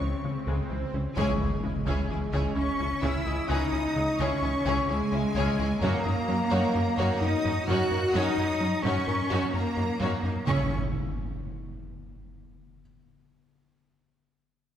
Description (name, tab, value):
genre	cinematic, hybrid orchestral and electronic film score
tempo	129 BPM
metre	5/4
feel	straight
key	C# dorian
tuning	A4 = 443 Hz
part	warm symphonic violin section	melody	0.0-10.7 s	G#5 to F#6	-37 LUFS	left 2 dB	none
part	warm symphonic violin section	second line	0.0-10.7 s	C#4 to C#5	-34 LUFS	left 2 dB	none
part	clear symphonic viola section	accompaniment	0.0-10.7 s	C#3 to E4	-38 LUFS	right 1 dB	none
part	dark French horn section	sustained chords	0.0-10.7 s	G#3 to F#4	-32 LUFS	left 2 dB	none
part	resonant blip pluck	arpeggios	0.0-10.4 s	C#3 to D#4	-38 LUFS	right 1 dB	none
part	rubbery square bass	riff	0.0-10.4 s	C#2 to F#3	-32 LUFS	left 1 dB	none
part	rich symphonic cello section	bass	0.0-10.7 s	C#3 to F#4	-32 LUFS	right 3 dB	none
part	warm symphonic double bass section	bass	0.0-10.7 s	C#2 to F#2	-33 LUFS	right 2 dB	none
part	swell and impact	sound effects	0.0-3.5, 10.5-12.8 s	none	-35 LUFS	equal	none
part	felt-muted upright piano	texture	1.2-10.5 s	C#5 to F#6	-39 LUFS	left 3 dB	digital delay
room	wet scoring stage reverb, RT60 1.8 s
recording	heard from further back in the room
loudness	-25 LUFS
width	side -10 dB against mid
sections	0.0-1.2 A section; 1.2-10.5 B section; 10.5-12.8 C section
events	swell 0.0-1.2; band accent 1.2-1.6; impact 1.2-3.5, 10.5-12.8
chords	0.0 C#m; 5.8 F#6; 10.5 N.C.